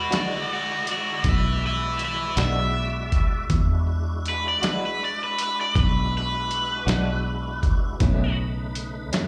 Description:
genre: slow blues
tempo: 53 BPM (dotted quarters)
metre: 12/8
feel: straight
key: unclear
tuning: A4 = 440 Hz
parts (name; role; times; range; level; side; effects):
- cranked stack guitar; melody; 0.0-8.4 s; F#4 to E5; -28 LUFS; equal; overdrive, spring reverb, slapback echo
- tonewheel organ; sustained chords; 0.0-9.3 s; C#3 to D5; -37 LUFS; equal; slow rotary speaker, chorus vibrato
- fingered electric bass; bass; 0.0-9.3 s; B1 to F#2; -28 LUFS; equal; none
- electric guitar through a small old amp; accompaniment; 0.1-9.3 s; B2 to F#4; -33 LUFS; equal; tremolo, slapback echo
- lo-fi sampler-style drum kit; drums; 0.1-9.3 s; hi-hat, kick drum, snare drum; -26 LUFS; equal; none
room: little or no reverb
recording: live gig heard through the venue's PA, club reverb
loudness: -24 LUFS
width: mono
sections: 0.0-9.3 A section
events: overdriven electric guitar solo 0.0-9.3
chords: 0.0 E9; 8.0 B9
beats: 0.12 1.25 2.37 | 3.50 4.62 5.75 6.88 | 8.00 9.13

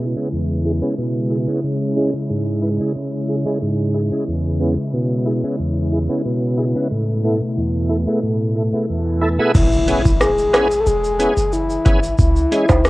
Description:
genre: dancehall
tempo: 91 BPM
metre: 4/4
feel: straight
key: E major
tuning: A4 = 440 Hz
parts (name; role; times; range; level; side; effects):
- bright tonewheel organ; accompaniment; 0.0-12.7 s; E2 to B4; -19 LUFS; equal; overdrive, chorus vibrato, slow rotary speaker, cassette tape
- airy breathy pad; sustained chords; 0.0-9.5 s; B2 to E4; -23 LUFS; equal; chorus, sidechain pumping, cassette tape
- clean 808-style bass; bass; 9.5-12.9 s; E1 to C#2; -21 LUFS; equal; none
- booming analog drum machine; drums; 9.5-12.9 s; crash cymbal, hi-hat, kick drum, rim click, shaker; -16 LUFS; equal; overdrive, vintage 12-bit sampler grit, cassette tape
- tube shaker and timbales; percussion; 9.5-12.9 s; none; -24 LUFS; right 3 dB; none
- impact; sound effects; 9.5-12.2 s; none; -25 LUFS; equal; none
- breathy flute-like synth lead; second line; 9.6-12.9 s; E4 to A4; -18 LUFS; left 2 dB; chorus, cassette tape, tape echo
room: light reverb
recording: home recording on cassette, low-pass filter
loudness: -16 LUFS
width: side -19 dB against mid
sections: 0.0-9.5 A section; 9.5-12.9 B section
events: filter sweep 0.0-9.5; impact 9.5-12.2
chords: 0.0 E6; 1.6 C#m; 4.3 E6; 6.9 Asus2; 9.5 E6; 12.2 C#m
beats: 0.32 0.98 | 1.64 2.30 2.96 3.62 | 4.27 4.93 5.59 6.25 | 6.91 7.57 8.23 8.89 | 9.55 10.21 10.87 11.53 | 12.19 12.85

